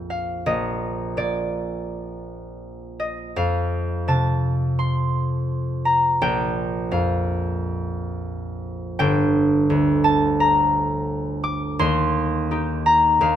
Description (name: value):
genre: classical, solo harp piece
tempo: 85 BPM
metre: 4/4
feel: rubato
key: Bb major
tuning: A4 = 441 Hz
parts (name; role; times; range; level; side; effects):
- concert harp; solo; 0.0-13.4 s; G1 to D6; -20 LUFS; equal; none
room: moderate stone room reverb, RT60 1.5 s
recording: none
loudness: -19 LUFS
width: side -10 dB against mid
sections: 0.0-13.4 A section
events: none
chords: 0.5 N.C.; 3.4 F7; 6.2 Bb5; 9.0 Gm; 11.8 Eb